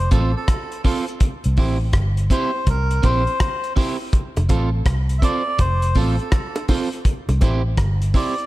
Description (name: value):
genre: roots reggae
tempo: 82 BPM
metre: 4/4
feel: swing 65% on 16ths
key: F major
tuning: A4 = 439 Hz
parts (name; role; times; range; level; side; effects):
- melodica; melody; 0.0-8.5 s; A4 to E5; -26 LUFS; equal; dub echo
- vintage muted fingered electric bass; bass; 0.0-8.1 s; F1 to C2; -19 LUFS; equal; none
- electric guitar at the edge of break-up; accompaniment; 0.1-8.3 s; C4 to C5; -26 LUFS; right 4 dB; dub echo
- cloth-damped thuddy drum kit; drums; 0.1-8.5 s; hi-hat, kick drum, rim click; -20 LUFS; equal; none
- bongos; percussion; 4.4-7.6 s; none; -30 LUFS; right 2 dB; none
room: small room ambience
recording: none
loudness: -17 LUFS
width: side -17 dB against mid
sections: 0.0-8.5 A section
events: none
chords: 0.0 F; 1.2 C; 4.1 F; 7.1 C